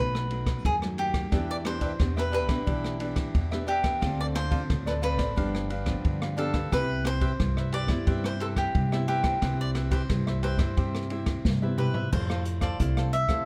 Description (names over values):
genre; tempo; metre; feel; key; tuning
samba and choro; 89 BPM; 4/4; straight; C major; A4 = 441 Hz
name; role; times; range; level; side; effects
cavaquinho; melody; 0.0-13.4 s; G4 to E5; -34 LUFS; equal; none
nylon-string guitar; accompaniment; 0.0-13.5 s; F#2 to A4; -35 LUFS; equal; none
upright bass; bass; 0.0-13.4 s; G1 to C3; -33 LUFS; equal; none
open jazz drum kit; drums; 0.1-13.5 s; crash cymbal, hi-hat, kick drum, ride cymbal, rim click, snare drum, toms; -32 LUFS; equal; none
cavaquinho; accompaniment; 1.3-13.5 s; D4 to F5; -38 LUFS; equal; none
room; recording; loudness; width
moderate studio reverb, RT60 0.7 s; none; -27 LUFS; mono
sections
0.0-12.1 A section; 12.1-13.5 B section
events
drum fill 11.5-12.1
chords
0.0 B7; 1.3 Em7; 4.0 Dm7; 5.4 G7; 6.7 Cmaj7; 12.1 Fmaj9